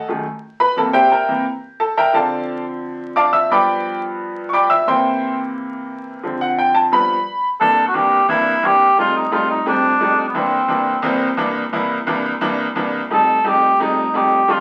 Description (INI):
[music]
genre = jazz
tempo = 175 BPM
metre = 4/4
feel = straight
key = C mixolydian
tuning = A4 = 440 Hz
[part]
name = bright upright piano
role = accompaniment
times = 0.0-14.6 s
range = C2 to E6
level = -20 LUFS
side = equal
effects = none
[part]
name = mellow cor anglais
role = melody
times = 7.6-11.0, 13.1-14.6 s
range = B3 to A4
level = -17 LUFS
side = equal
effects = none
[sound]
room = wet club reverb, RT60 0.6 s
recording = very old 78 rpm record, vinyl crackle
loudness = -17 LUFS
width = mono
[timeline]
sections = 0.0-7.6 A section; 7.6-14.6 B section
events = upright piano solo 0.0-7.6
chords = 0.0 F#m6; 0.8 C7; 2.1 Dm7; 3.5 G7; 4.9 C7; 6.2 Dm7; 6.9 G7; 7.6 C7; 9.0 F7; 10.4 C7; 13.1 F7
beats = 0.09 0.43 | 0.77 1.11 1.46 1.80 | 2.14 2.48 2.82 3.17 | 3.51 3.85 4.19 4.53 | 4.88 5.22 5.56 5.90 | 6.24 6.58 6.93 7.27 | 7.61 7.95 8.29 8.64 | 8.98 9.32 9.67 10.01 | 10.35 10.70 11.04 11.38 | 11.73 12.07 12.42 12.76 | 13.11 13.45 13.80 14.14 | 14.49